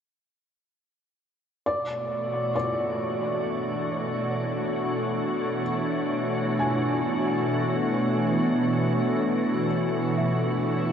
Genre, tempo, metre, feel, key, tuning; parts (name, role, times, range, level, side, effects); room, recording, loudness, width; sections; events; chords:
ambient; 67 BPM; 4/4; straight; B dorian; A4 = 439 Hz
wind-like tuned noise texture; texture; 2.3-10.9 s; C#5 to C#6; -35 LUFS; right 1 dB; built-in reverb, shimmer reverb
soft additive organ-like pad; sustained chords; 1.7-10.9 s; B2 to F#4; -24 LUFS; equal; ensemble chorus, built-in reverb, shimmer reverb
felt-muted upright piano; arpeggios; 1.7-10.9 s; D5 to G#5; -32 LUFS; equal; tape echo, shimmer reverb
wet cathedral reverb, RT60 6.1 s; dark, warm production, nothing above 10.3 kHz; -24 LUFS; side -8 dB against mid
1.7-10.9 A section
fade-out on felt piano 1.7-10.9; fade-out on synth texture 1.7-10.9
1.7 Bmadd9